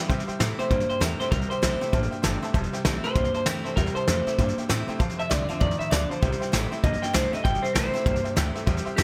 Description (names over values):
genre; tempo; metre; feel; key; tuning
rockabilly; 196 BPM; 4/4; swing 62% on 8ths; C major; A4 = 439 Hz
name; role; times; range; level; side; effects
picked steel-string acoustic guitar; accompaniment; 0.0-9.0 s; F2 to F4; -37 LUFS; equal; none
tack piano; accompaniment; 0.0-9.0 s; C5 to B5; -39 LUFS; equal; none
electric guitar through a small old amp; riff; 0.0-9.0 s; F2 to Bb3; -35 LUFS; equal; spring reverb
upright bass; bass; 0.1-9.0 s; E1 to C3; -32 LUFS; equal; none
soft brush drum kit; drums; 0.1-9.0 s; hi-hat, kick drum, snare drum; -29 LUFS; equal; none
electric guitar through a small old amp; melody; 0.6-9.0 s; G4 to G5; -30 LUFS; equal; tape echo
room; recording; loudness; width
little or no reverb; none; -25 LUFS; mono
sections
0.1-9.0 A section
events
clean electric guitar solo 0.1-9.0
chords
0.1 C6; 5.0 F6; 6.2 C6